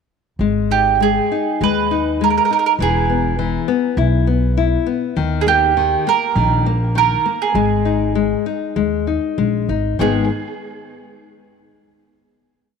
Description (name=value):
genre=fado-style ballad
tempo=100 BPM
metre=4/4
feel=rubato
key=G# harmonic minor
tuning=A4 = 440 Hz
part: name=nylon-string guitar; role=accompaniment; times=0.4-10.3 s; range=G#2 to E4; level=-19 LUFS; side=left 10 dB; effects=none
part: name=upright bass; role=bass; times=0.4-10.3 s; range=E1 to D#2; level=-20 LUFS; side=equal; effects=none
part: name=mandolin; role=melody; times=0.7-10.3 s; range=G4 to B4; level=-17 LUFS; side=right 10 dB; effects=tape echo
room=moderate plate reverb, RT60 2.9 s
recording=1960s-style stereo with parts hard left and right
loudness=-15 LUFS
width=side -6 dB against mid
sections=0.4-10.0 A section; 10.0-12.4 final chord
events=none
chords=0.4 G#m; 2.8 E; 5.2 D#; 7.5 G#5; 10.0 G#m